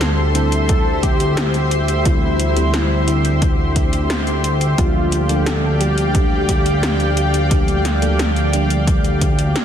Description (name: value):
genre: synthwave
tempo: 88 BPM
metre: 4/4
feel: straight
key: unclear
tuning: A4 = 440 Hz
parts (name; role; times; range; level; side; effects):
- wide unison lead; melody; 0.0-9.5 s; E4 to A4; -23 LUFS; left 1 dB; ping-pong delay
- lush unison pad; sustained chords; 0.0-9.6 s; G4 to C6; -23 LUFS; left 1 dB; chorus, vintage 12-bit sampler grit, sidechain pumping
- FM electric piano with soft pad layer; stabs; 0.0-9.6 s; D3 to A4; -24 LUFS; right 2 dB; chorus, ping-pong delay
- fat analog bass; bass; 0.0-9.6 s; D2; -18 LUFS; equal; none
- 80s electronic pad drums; drums; 0.0-9.6 s; hi-hat, snare drum; -24 LUFS; left 1 dB; none
- electronic kick drum; drums; 0.7-9.4 s; none; -18 LUFS; equal; none
room: light reverb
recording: dense, heavily limited modern master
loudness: -14 LUFS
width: side -9 dB against mid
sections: 0.0-9.6 A section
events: none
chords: 0.0 C/D; 4.8 Gm7/D